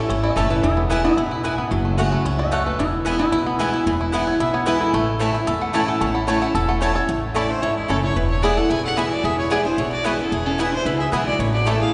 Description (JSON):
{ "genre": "bluegrass", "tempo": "223 BPM", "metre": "4/4", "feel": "straight", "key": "A major", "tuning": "A4 = 440 Hz", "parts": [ { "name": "bluegrass banjo", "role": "melody", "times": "0.0-11.7 s", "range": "E3 to A4", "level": "-29 LUFS", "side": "equal", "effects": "none" }, { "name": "lap resonator guitar", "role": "second line", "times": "0.0-11.9 s", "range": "G#3 to B5", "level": "-28 LUFS", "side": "equal", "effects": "none" }, { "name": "picked steel-string acoustic guitar", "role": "accompaniment", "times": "0.0-11.9 s", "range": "E2 to F#4", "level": "-26 LUFS", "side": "equal", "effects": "none" }, { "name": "upright bass", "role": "bass", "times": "0.1-11.8 s", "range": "E1 to C#2", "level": "-27 LUFS", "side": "equal", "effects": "none" }, { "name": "mandolin", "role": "stabs", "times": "0.4-11.8 s", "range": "A3 to A5", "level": "-30 LUFS", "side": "equal", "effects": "none" }, { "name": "clear fiddle", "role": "melody", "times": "7.4-11.9 s", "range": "E4 to G#5", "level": "-28 LUFS", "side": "equal", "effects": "none" } ], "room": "wet cathedral reverb, RT60 6.3 s", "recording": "recorded in a church or concert hall, nothing above 10.5 kHz", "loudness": "-20 LUFS", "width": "mono", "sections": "0.0-7.1 A section; 7.1-11.9 B section", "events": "resonator guitar played with a steel bar solo 0.0-7.1", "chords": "0.0 A; 0.6 E; 1.7 F#m; 2.8 E; 4.9 A; 8.2 E; 11.4 A" }